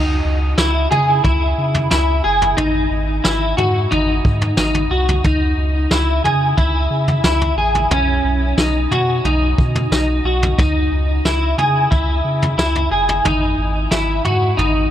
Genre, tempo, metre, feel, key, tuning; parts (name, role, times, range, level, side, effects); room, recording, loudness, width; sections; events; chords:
dream pop; 90 BPM; 4/4; straight; C# minor; A4 = 440 Hz
clean electric guitar; arpeggios; 0.0-14.9 s; C#4 to G#4; -17 LUFS; equal; ensemble chorus, tape echo
warm sub bass; bass; 0.0-14.9 s; F#1 to C#3; -19 LUFS; equal
vintage brush drum kit; drums; 0.6-14.7 s; kick drum, snare drum, toms; -21 LUFS; equal
light reverb, studio ambience; -14 LUFS; side -11 dB against mid
0.0-14.9 A section
0.0 C#madd9; 2.6 G#7(no3); 5.2 C#madd9; 7.9 B; 10.6 C#madd9; 13.2 G#7(no3)